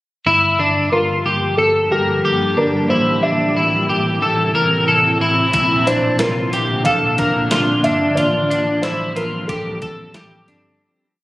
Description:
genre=dream pop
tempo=91 BPM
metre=4/4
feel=straight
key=F major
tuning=A4 = 440 Hz
part: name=granular cloud pad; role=sustained chords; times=1.0-10.8 s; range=A2 to G4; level=-22 LUFS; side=equal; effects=built-in reverb, shimmer reverb
part: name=electric guitar at the edge of break-up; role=arpeggios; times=0.3-10.8 s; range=D4 to Bb4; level=-17 LUFS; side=left 1 dB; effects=analog chorus, ping-pong delay, shimmer reverb
part: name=vintage muted picked electric bass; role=bass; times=0.3-10.8 s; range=G1 to Bb1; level=-24 LUFS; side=equal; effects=none
part: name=felt-muted upright piano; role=melody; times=0.9-10.4 s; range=G4 to F5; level=-21 LUFS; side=equal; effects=ping-pong delay, shimmer reverb
part: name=clean 12-bit digital drum machine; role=drums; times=5.5-10.6 s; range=hi-hat, kick drum, snare drum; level=-23 LUFS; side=equal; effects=none
room=moderate plate reverb, RT60 2.0 s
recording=recorded on a phone in the room, studio reverb, compression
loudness=-14 LUFS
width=side -17 dB against mid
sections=0.3-10.8 A section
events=fade-out 8.2-10.8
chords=0.3 Gm7; 2.9 Am; 5.5 Bbmaj7; 8.2 Fadd9/A

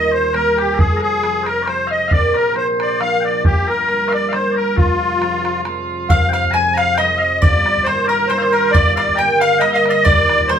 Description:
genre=celtic folk, Celtic waltz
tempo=136 BPM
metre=3/4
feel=swing 53% on 8ths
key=F dorian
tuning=A4 = 445 Hz
part: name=musette accordion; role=melody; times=0.0-10.6 s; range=F4 to Ab5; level=-16 LUFS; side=left 1 dB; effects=none
part: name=mellow small bagpipes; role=second line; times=0.0-10.6 s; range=F4 to Bb5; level=-22 LUFS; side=left 1 dB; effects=none
part: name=concert harp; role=accompaniment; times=0.0-10.6 s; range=Eb1 to D4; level=-20 LUFS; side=right 2 dB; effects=none
part: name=bodhran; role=percussion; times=0.3-10.6 s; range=none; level=-17 LUFS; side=right 1 dB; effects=none
part: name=bowl-back mandolin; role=second line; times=6.1-10.6 s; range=Bb4 to Ab5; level=-22 LUFS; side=right 1 dB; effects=none
room=wet studio reverb, RT60 0.6 s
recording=band playing live in one room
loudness=-13 LUFS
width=side -8 dB against mid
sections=0.0-6.1 A section; 6.1-10.6 B section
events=none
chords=0.0 Eb; 0.8 Fm; 2.1 Bb; 3.4 Gm; 4.8 Fm; 7.4 Eb/G; 8.7 Gm; 10.1 Eb

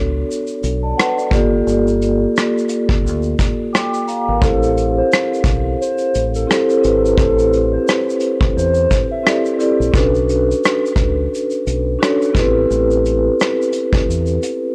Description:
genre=lo-fi hip hop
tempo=87 BPM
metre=4/4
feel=swing 58% on 16ths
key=unclear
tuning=A4 = 445 Hz
part: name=vibraphone with soft mallets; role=accompaniment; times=0.0-14.7 s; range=Bb3 to D6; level=-19 LUFS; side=equal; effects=cassette tape, low-pass filter
part: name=deep dub fingered electric bass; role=bass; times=0.0-14.4 s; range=G1 to E2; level=-23 LUFS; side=equal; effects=none
part: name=vintage brush drum kit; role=drums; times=0.3-14.6 s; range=hi-hat, kick drum, rim click, shaker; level=-21 LUFS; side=equal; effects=vintage 12-bit sampler grit
part: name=hollow clarinet-like synth lead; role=melody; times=4.4-9.4 s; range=A4 to E5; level=-22 LUFS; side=equal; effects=chorus, phaser, low-pass filter, analog delay
room=light reverb, studio ambience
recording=dry, gritty hardware recording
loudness=-16 LUFS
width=mono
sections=0.0-14.7 A section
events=break 14.1-14.7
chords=0.0 Bm7; 1.3 Gm7; 4.4 Am7; 9.9 Bm7; 12.3 Am7

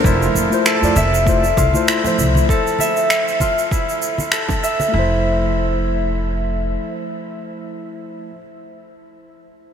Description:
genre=sunset chillout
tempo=98 BPM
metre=4/4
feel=swing 55% on 16ths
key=F major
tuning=A4 = 440 Hz
part: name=mellow tine electric piano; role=accompaniment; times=0.0-8.4 s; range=F3 to E5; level=-22 LUFS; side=moving between left 5 dB and right 2 dB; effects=auto-pan, vintage 12-bit sampler grit, ping-pong delay
part: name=Celtic harp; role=arpeggios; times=0.0-7.5 s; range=D4 to E5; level=-20 LUFS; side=equal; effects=low-pass filter, ping-pong delay
part: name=upright bass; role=bass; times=0.0-6.7 s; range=F1 to F2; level=-19 LUFS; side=equal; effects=none
part: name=electronic kick drum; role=drums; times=0.0-4.6 s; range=none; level=-20 LUFS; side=equal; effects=overdrive
part: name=shaker and finger snaps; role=drums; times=0.1-4.9 s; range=none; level=-22 LUFS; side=right 1 dB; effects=none
part: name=congas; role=percussion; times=0.3-4.9 s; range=none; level=-29 LUFS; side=right 1 dB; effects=none
room=wet huge ambient reverb, RT60 8.6 s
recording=dreamy mix soaked in reverb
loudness=-15 LUFS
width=side -8 dB against mid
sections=0.0-4.9 A section; 4.9-7.4 B section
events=none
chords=0.0 Fmaj7

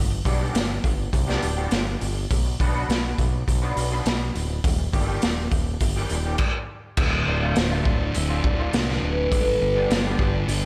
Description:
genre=quiet-loud alternative rock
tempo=103 BPM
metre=4/4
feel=straight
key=unclear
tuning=A4 = 440 Hz
part: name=growling picked electric bass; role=bass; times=0.0-10.7 s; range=D1 to C2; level=-28 LUFS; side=equal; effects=overdrive
part: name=electric guitar through a small old amp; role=arpeggios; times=0.1-10.7 s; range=A2 to B4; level=-34 LUFS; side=equal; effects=ensemble chorus, slapback echo
part: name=raw garage drum kit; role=drums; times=0.3-10.6 s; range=crash cymbal, hi-hat, kick drum, snare drum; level=-26 LUFS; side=equal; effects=none
part: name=concert harp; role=melody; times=7.0-10.7 s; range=A4 to E5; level=-30 LUFS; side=equal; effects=slapback echo
part: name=thick fuzz guitar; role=riff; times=7.0-10.7 s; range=D2 to G3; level=-30 LUFS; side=equal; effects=distortion
room=light reverb, small room ambience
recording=none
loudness=-23 LUFS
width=mono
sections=0.0-7.0 A section; 7.0-10.7 B section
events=none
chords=0.0 G; 2.3 Bm; 4.6 Eb; 7.0 Dm; 9.3 G

